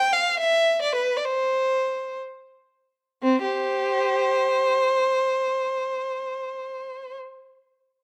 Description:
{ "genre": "classical, baroque-style suite movement for unaccompanied violin", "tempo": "free time", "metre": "none", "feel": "none", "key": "C major", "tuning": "A4 = 441 Hz", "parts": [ { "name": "rich violin", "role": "solo", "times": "0.0-7.2 s", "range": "C4 to G5", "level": "-24 LUFS", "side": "equal", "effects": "none" } ], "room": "light reverb", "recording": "close, detailed microphones", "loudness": "-24 LUFS", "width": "mono", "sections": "0.0-3.2 A section; 3.2-7.3 B section", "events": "slowing down 0.0-3.2", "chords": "none" }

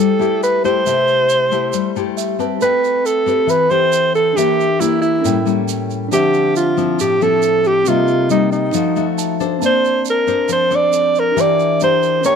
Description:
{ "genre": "bossa nova", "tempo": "137 BPM", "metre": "4/4", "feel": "straight", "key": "A minor", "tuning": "A4 = 440 Hz", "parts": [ { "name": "mellow alto saxophone", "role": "melody", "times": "0.0-12.4 s", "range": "Eb4 to D5", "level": "-15 LUFS", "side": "right 2 dB", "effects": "none" }, { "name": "nylon-string guitar", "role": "accompaniment", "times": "0.0-12.4 s", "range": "A2 to C5", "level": "-19 LUFS", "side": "left 11 dB", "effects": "none" }, { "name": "tine electric piano", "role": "accompaniment", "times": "0.0-12.4 s", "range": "C4 to B5", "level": "-25 LUFS", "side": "right 14 dB", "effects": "none" }, { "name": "egg shaker", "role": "percussion", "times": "0.2-12.4 s", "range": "none", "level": "-30 LUFS", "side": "right 17 dB", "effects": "none" } ], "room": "light reverb, small room reverb", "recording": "1960s-style stereo with parts hard left and right", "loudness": "-13 LUFS", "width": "side -6 dB against mid", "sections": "0.0-2.6 A section; 2.6-12.4 B section", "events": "tine electric piano fill 2.0-2.6, 9.0-9.6", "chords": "0.0 C6; 2.6 Am9; 4.4 Em7b5; 5.2 A7b9; 6.1 Dm9; 7.9 Cm7; 8.7 F7b9; 9.6 Bbmaj9; 11.4 Em7b5" }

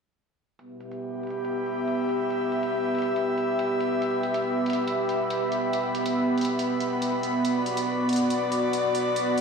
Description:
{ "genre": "heavy wobble dubstep", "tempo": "140 BPM", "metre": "4/4", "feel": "half-time", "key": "E minor", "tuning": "A4 = 441 Hz", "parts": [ { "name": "supersaw pad", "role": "sustained chords", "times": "0.6-9.4 s", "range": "B3 to E5", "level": "-28 LUFS", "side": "right 1 dB", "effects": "low-pass filter" }, { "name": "electronic hi-hat", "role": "drums", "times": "0.6-9.4 s", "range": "none", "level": "-38 LUFS", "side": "right 1 dB", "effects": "overdrive, low-pass filter on hats, low-pass filter on room" }, { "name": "airy breathy pad", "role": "texture", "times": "0.6-9.4 s", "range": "B3 to B5", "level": "-26 LUFS", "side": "equal", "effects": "chorus" } ], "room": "wet plate reverb, RT60 1.3 s", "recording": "played on a big sound system in a bare room, large studio reverb", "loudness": "-24 LUFS", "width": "side -5 dB against mid", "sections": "0.6-9.4 A section", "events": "filter sweep on drum 0.6-9.4; filter sweep on supersaw synth 0.6-9.4", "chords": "0.6 Em; 7.4 Bm" }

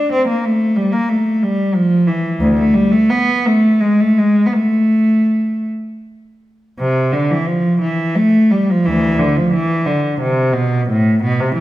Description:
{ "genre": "classical, baroque-style suite movement for unaccompanied cello", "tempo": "52-62 BPM (dotted quarters)", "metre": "6/8", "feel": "rubato", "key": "A minor", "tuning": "A4 = 440 Hz", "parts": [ { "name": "warm cello", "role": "solo", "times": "0.0-11.6 s", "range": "D2 to D4", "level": "-13 LUFS", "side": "equal", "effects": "none" } ], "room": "wet recital hall reverb, RT60 1.7 s", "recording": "minimal, uncompressed stereo recording", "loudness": "-13 LUFS", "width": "side -15 dB against mid", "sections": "0.0-6.8 A section; 6.8-11.6 B section", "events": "none", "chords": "none" }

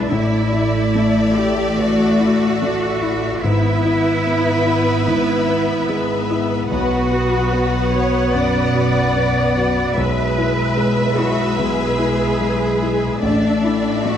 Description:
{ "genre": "cinematic, emotional film score for orchestra", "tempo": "73 BPM", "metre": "4/4", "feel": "rubato", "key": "unclear", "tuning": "A4 = 440 Hz", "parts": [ { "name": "warm symphonic violin section", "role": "melody", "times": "0.0-14.2 s", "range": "E5 to F#5", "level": "-27 LUFS", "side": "left 5 dB", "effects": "none" }, { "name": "rich studio violin section", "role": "second line", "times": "0.0-14.2 s", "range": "B4 to D5", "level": "-24 LUFS", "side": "equal", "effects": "none" }, { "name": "warm concert grand piano", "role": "accompaniment", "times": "0.0-14.2 s", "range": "A1 to F#4", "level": "-22 LUFS", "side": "left 2 dB", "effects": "none" }, { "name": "warm symphonic viola section", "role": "accompaniment", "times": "0.0-14.2 s", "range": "G#3 to B3", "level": "-22 LUFS", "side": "left 1 dB", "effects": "none" }, { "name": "warm symphonic cello section", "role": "bass", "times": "0.0-14.2 s", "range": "D4 to D5", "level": "-22 LUFS", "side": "right 2 dB", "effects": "none" }, { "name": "warm symphonic double bass section", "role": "bass", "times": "0.0-14.2 s", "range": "G#1 to B1", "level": "-24 LUFS", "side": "right 3 dB", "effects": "none" } ], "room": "moderate scoring stage reverb, RT60 1.6 s", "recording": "dark, warm production", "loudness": "-15 LUFS", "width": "side -9 dB against mid", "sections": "0.0-14.2 A section", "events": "none", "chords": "0.1 Asus4; 3.4 E/G#; 6.7 Bm; 10.0 E/B; 13.2 Asus4" }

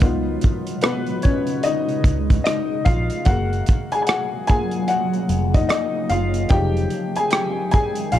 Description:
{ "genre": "lo-fi hip hop", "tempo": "74 BPM", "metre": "4/4", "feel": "swing 64% on 16ths", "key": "unclear", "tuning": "A4 = 441 Hz", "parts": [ { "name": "warm upright piano", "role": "accompaniment", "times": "0.0-8.2 s", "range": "F3 to Ab5", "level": "-22 LUFS", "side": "left 3 dB", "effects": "low-pass filter" }, { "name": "granular cloud pad", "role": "sustained chords", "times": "0.0-8.2 s", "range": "Bb2 to C4", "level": "-27 LUFS", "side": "right 1 dB", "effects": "built-in reverb, low-pass filter" }, { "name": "vintage muted fingered electric bass", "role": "bass", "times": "0.0-8.2 s", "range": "F1 to Db2", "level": "-22 LUFS", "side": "right 1 dB", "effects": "none" }, { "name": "warm soul drum kit", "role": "drums", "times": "0.0-8.2 s", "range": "hi-hat, kick drum, rim click", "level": "-19 LUFS", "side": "right 1 dB", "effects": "none" } ], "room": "studio ambience", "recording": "dark, warm production, faint mains hum", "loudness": "-18 LUFS", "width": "side -12 dB against mid", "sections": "0.0-8.2 A section", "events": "upright piano solo 0.0-8.2", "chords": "0.0 Db7; 3.3 Gbmaj7; 6.5 Fm7" }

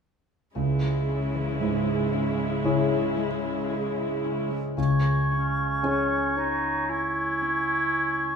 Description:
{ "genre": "cinematic, emotional film score for orchestra", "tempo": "57 BPM", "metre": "4/4", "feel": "rubato", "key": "C# minor", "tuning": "A4 = 440 Hz", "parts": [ { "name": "rich studio viola section", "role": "accompaniment", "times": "0.6-4.5 s", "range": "G#3 to E4", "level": "-32 LUFS", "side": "equal", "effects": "none" }, { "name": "warm concert grand piano", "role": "accompaniment", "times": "0.6-8.4 s", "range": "C#2 to C#5", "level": "-27 LUFS", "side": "right 1 dB", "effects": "none" }, { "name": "concert harp", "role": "arpeggios", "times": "0.6-8.4 s", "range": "C#3 to G#5", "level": "-31 LUFS", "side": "left 3 dB", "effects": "none" }, { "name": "rich studio cello section", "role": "bass", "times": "0.6-4.5 s", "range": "C#3", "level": "-33 LUFS", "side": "left 3 dB", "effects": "none" }, { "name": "mellow oboe", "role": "second line", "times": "4.8-8.4 s", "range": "G#5", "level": "-30 LUFS", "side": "right 1 dB", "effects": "none" }, { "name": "silver concert flute", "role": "second line", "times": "4.8-8.4 s", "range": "C#6", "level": "-30 LUFS", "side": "right 1 dB", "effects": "none" }, { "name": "clear clarinet", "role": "second line", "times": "5.3-8.4 s", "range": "C#4 to E4", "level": "-28 LUFS", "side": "left 1 dB", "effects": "none" } ], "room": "wet stone room reverb, RT60 1.1 s", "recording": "none", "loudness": "-23 LUFS", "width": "side -6 dB against mid", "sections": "0.6-4.8 A section; 4.8-8.4 B section", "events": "none", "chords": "0.6 C#m" }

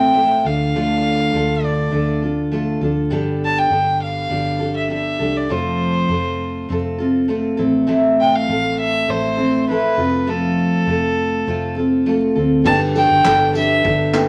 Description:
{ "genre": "acoustic pop", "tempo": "101 BPM", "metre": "4/4", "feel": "straight", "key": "G mixolydian", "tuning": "A4 = 442 Hz", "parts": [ { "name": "warm violin", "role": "melody", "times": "0.0-14.1 s", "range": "A4 to A5", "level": "-21 LUFS", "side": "equal", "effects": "none" }, { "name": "picked steel-string acoustic guitar", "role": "accompaniment", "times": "0.0-14.3 s", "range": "A2 to A4", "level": "-21 LUFS", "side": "equal", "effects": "none" }, { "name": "vintage muted fingered electric bass", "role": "bass", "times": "0.0-14.3 s", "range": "F1 to D2", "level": "-27 LUFS", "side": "equal", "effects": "none" }, { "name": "felt-muted upright piano", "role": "accompaniment", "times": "12.6-14.3 s", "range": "B3 to G5", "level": "-25 LUFS", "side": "equal", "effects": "none" }, { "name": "loose indie drum kit", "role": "drums", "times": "12.7-14.3 s", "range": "crash cymbal, handclaps, kick drum, tambourine", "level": "-28 LUFS", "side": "equal", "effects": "none" } ], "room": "wet studio reverb, RT60 0.8 s", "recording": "vinyl crackle", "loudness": "-18 LUFS", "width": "mono", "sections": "0.0-12.7 A section; 12.7-14.3 B section", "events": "none", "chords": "0.4 Dm; 3.1 Gadd9; 5.5 F; 7.6 Am; 10.0 F; 12.7 Gadd9" }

